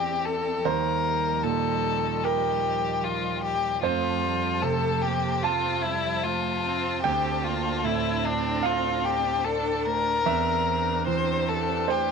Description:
neoclassical piano and strings; 75 BPM; 4/4; rubato; F major; A4 = 444 Hz
rich violin; melody; 0.0-12.1 s; D4 to C5; -26 LUFS; left 7 dB
rich cello; second line; 0.0-12.1 s; G3 to D4; -36 LUFS; right 11 dB
warm grand piano; accompaniment; 0.0-12.1 s; D2 to A5; -28 LUFS; right 9 dB
rich chamber string section; sustained chords; 0.0-12.1 s; F3 to A5; -37 LUFS; equal
moderate spring reverb, RT60 1.2 s, small room ambience; 1960s-style stereo with parts hard left and right; -23 LUFS; side -5 dB against mid
0.0-12.1 A section
0.0 Cadd9/E; 0.6 Ebadd9; 3.8 F; 7.0 Dm7; 10.3 Cadd9/E
| 0.65 1.44 2.24 3.04 | 3.83 4.62 5.44 6.24 | 7.04 7.85 8.65 9.45 | 10.26 11.06 11.88

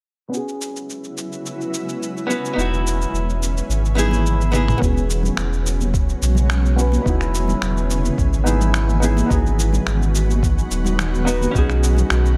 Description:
sunset chillout; 107 BPM; 4/4; straight; E major; A4 = 440 Hz
archtop guitar, miked and amplified; accompaniment; 0.3-12.4 s; B3 to B4; -27 LUFS; equal; low-pass filter, tape echo
shimmering ambient pad; sustained chords; 0.9-12.4 s; C#3 to F#4; -28 LUFS; equal; chorus, built-in reverb
dusty soul sampler-style drum kit; drums; 0.3-12.4 s; cabasa, finger snaps, toms; -30 LUFS; equal; small room ambience
warm sub bass; bass; 2.6-12.4 s; D#1 to B1; -21 LUFS; equal
congas; percussion; 4.0-12.1 s; -30 LUFS; equal
electronic kick drum; drums; 4.8-11.7 s; -23 LUFS; equal; small room ambience
little or no reverb; -19 LUFS; mono
0.3-4.8 A section; 4.8-12.4 B section
filter sweep on hollow-body jazz guitar 0.3-4.8, 4.8-12.4; drum fill 4.5
0.3 E69; 2.6 C#m7/E; 4.8 E69; 7.1 C#m7/E; 9.3 G#m7; 11.5 B7
| 0.33 0.89 1.45 2.01 | 2.57 3.13 3.69 4.25 | 4.82 5.38 5.94 6.50 | 7.06 7.62 8.18 8.74 | 9.30 9.86 10.42 10.98 | 11.54 12.11

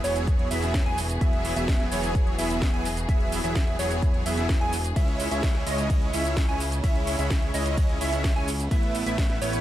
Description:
EDM, festival progressive house; 128 BPM; 4/4; straight; E major; A4 = 443 Hz
rich studio string section; sustained chords; 0.0-9.6 s; C#3 to G#4; -35 LUFS; equal; sidechain pumping
plucky unison lead; arpeggios; 0.0-9.6 s; C#5 to G#5; -32 LUFS; right 1 dB; sidechain pumping, tape echo
supersaw chords; riff; 0.0-9.6 s; F#3 to G#5; -30 LUFS; right 1 dB; wide subtle chorus, sidechain pumping, tape echo
fat analog bass; bass; 0.0-9.6 s; E1 to C#2; -30 LUFS; equal; sidechain pumping
house drum kit; drums; 0.0-9.6 s; hi-hat, ride cymbal, shaker, snare drum; -34 LUFS; right 2 dB
electronic kick drum; drums; 0.3-9.3 s; -24 LUFS; equal
little or no reverb; -22 LUFS; side -13 dB against mid
0.0-9.6 A section
0.0 Eadd9; 5.0 C#m; 8.7 Asus2
0.28 0.74 | 1.21 1.68 2.15 2.62 | 3.09 3.56 4.03 4.49 | 4.96 5.43 5.90 6.37 | 6.84 7.31 7.78 8.24 | 8.71 9.18

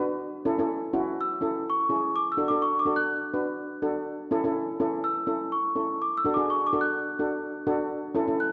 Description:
calypso; 124 BPM; 4/4; swing 54% on 16ths; A major; A4 = 445 Hz
steel pan; accompaniment; 0.0-8.5 s; C#4 to B4; -30 LUFS; equal
celesta; melody; 1.2-8.5 s; C#6 to F#6; -30 LUFS; equal
wet scoring stage reverb, RT60 1.7 s; worn, warbling old tape, cassette tape, warbly pitch drift; -27 LUFS; mono
0.0-8.5 A section
celesta solo 0.0-8.5
0.2 A6; 2.1 D; 4.1 A; 6.0 D; 7.9 A6
| 0.22 0.70 1.19 1.67 | 2.15 2.63 3.12 3.60 | 4.08 4.56 5.04 5.53 | 6.01 6.49 6.97 7.45 | 7.93 8.41

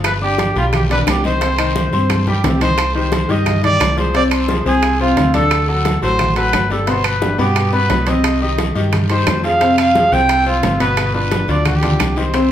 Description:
latin, salsa; 176 BPM; 4/4; straight; C harmonic minor; A4 = 440 Hz
bright upright piano; accompaniment; 0.0-12.5 s; B2 to D6; -19 LUFS; left 3 dB
fingered electric bass; bass; 0.0-12.5 s; G1 to G2; -19 LUFS; equal
bongos; percussion; 0.0-12.5 s; -26 LUFS; left 3 dB
claves; percussion; 0.0-12.2 s; -27 LUFS; right 6 dB
congas; percussion; 0.0-12.5 s; -25 LUFS; equal
guiro; percussion; 0.0-12.5 s; -31 LUFS; left 3 dB
timbales; percussion; 0.0-12.5 s; -24 LUFS; right 5 dB
warm trumpet; melody; 0.1-12.5 s; F4 to G5; -18 LUFS; right 1 dB
wet large studio reverb, RT60 0.9 s; band playing live in one room; -13 LUFS; side -10 dB against mid
0.0-2.8 A section; 2.8-12.5 B section
drum fill 2.1-2.8
0.0 G7; 1.4 Cm; 4.1 Fm/C; 5.5 D7; 6.9 G; 8.2 Cm; 9.6 F5; 11.0 G7
| 0.05 0.39 0.73 1.07 | 1.41 1.76 2.10 2.44 | 2.78 3.12 3.46 3.81 | 4.15 4.49 4.83 5.17 | 5.51 5.86 6.20 6.54 | 6.88 7.22 7.56 7.90 | 8.24 8.59 8.93 9.27 | 9.61 9.95 10.29 10.63 | 10.98 11.32 11.66 12.00 | 12.34

